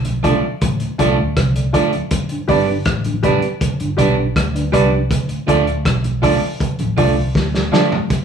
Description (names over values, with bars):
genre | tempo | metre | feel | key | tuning
roots reggae | 80 BPM | 4/4 | straight | unclear | A4 = 439 Hz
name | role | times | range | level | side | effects
vintage muted fingered electric bass | bass | 0.0-7.7 s | G1 to D2 | -20 LUFS | equal | none
vintage drum kit | drums | 0.0-8.2 s | hi-hat, kick drum, rim click, snare drum, toms | -20 LUFS | left 1 dB | none
mellow tonewheel organ | accompaniment | 0.1-8.0 s | D2 to D4 | -26 LUFS | equal | chorus vibrato, slow rotary speaker
congas | percussion | 0.1-8.2 s | none | -28 LUFS | right 7 dB | none
electric guitar at the edge of break-up | accompaniment | 0.2-7.9 s | F3 to D4 | -22 LUFS | right 5 dB | none
warm upright piano | stabs | 0.2-7.9 s | F4 to D5 | -19 LUFS | right 2 dB | none
room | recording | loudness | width
moderate studio reverb, RT60 0.8 s | band playing live in one room | -14 LUFS | side -7 dB against mid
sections
0.0-8.1 A section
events
drum fill 7.4-8.1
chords
0.0 Dm; 2.1 G; 5.1 Dm